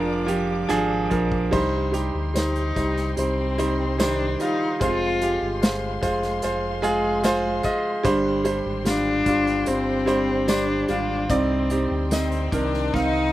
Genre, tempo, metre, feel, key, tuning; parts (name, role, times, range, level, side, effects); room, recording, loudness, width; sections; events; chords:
pop ballad; 74 BPM; 4/4; straight; C minor; A4 = 444 Hz
warm cello; melody; 0.0-12.1 s; C4 to F4; -26 LUFS; left 2 dB; slapback echo
clear concert grand piano; accompaniment; 0.0-13.3 s; G2 to F5; -23 LUFS; right 1 dB; slapback echo
dark studio string section; sustained chords; 0.0-13.3 s; Ab3 to D6; -37 LUFS; left 4 dB
sub bass with octave; bass; 0.0-13.3 s; F1 to D2; -29 LUFS; left 1 dB
unplugged drum kit; drums; 0.3-13.1 s; crash cymbal, hi-hat, kick drum, rim click, snare drum; -26 LUFS; equal
tambourine; percussion; 1.5-12.7 s; -40 LUFS; left 6 dB
bright chamber cello section; second line; 12.1-13.3 s; C4 to Eb4; -26 LUFS; left 4 dB; slapback echo
little or no reverb; recorded outdoors, with no room sound; -20 LUFS; side -14 dB against mid
0.0-1.5 A section; 1.5-13.3 B section
drum fill 12.9-13.3
0.0 Ddim/F; 1.5 Cm; 4.8 Fm; 8.0 Gsus4; 11.3 Cmadd9